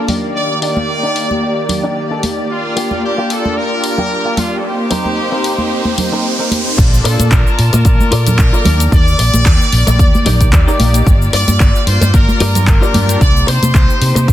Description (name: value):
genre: nu-disco, nu disco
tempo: 112 BPM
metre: 4/4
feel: swing 55% on 16ths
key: G minor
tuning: A4 = 437 Hz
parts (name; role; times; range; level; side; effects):
- brilliant trumpet section; melody; 0.0-14.3 s; F4 to D5; -19 LUFS; left 1 dB; analog delay
- warm analog pad; accompaniment; 0.0-13.8 s; Eb3 to D6; -21 LUFS; equal; chorus, sidechain pumping, slapback echo
- dark chamber string section; sustained chords; 0.0-14.3 s; Eb3 to A5; -23 LUFS; left 1 dB; sidechain pumping
- direct-recorded clean electric guitar; riff; 0.0-14.3 s; Bb3 to D5; -22 LUFS; left 2 dB; lush chorus, low-pass filter
- house drum kit; drums; 0.1-14.3 s; crash cymbal, handclaps, hi-hat, shaker; -20 LUFS; left 3 dB; low-pass filter on hats, low-pass filter on cymbals, low-pass filter on perc, low-pass filter on snare
- congas; percussion; 0.1-14.3 s; none; -20 LUFS; equal; none
- riser; sound effects; 4.6-6.8 s; none; -23 LUFS; right 2 dB; none
- fingered electric bass with an envelope filter; bass; 6.8-14.3 s; G1 to C3; -13 LUFS; equal; none
- electronic kick drum; drums; 6.8-14.3 s; none; -11 LUFS; equal; none
room: light reverb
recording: dense, heavily limited modern master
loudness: -10 LUFS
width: side -13 dB against mid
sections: 0.0-6.8 A section; 6.8-14.3 B section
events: riser 4.6-6.8; drop 6.8-14.3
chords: 0.1 Ebmaj7; 2.5 Gm7; 4.6 Cm7; 6.8 Bbmaj7; 8.7 Ebmaj7; 11.1 Gm7; 13.2 Cm7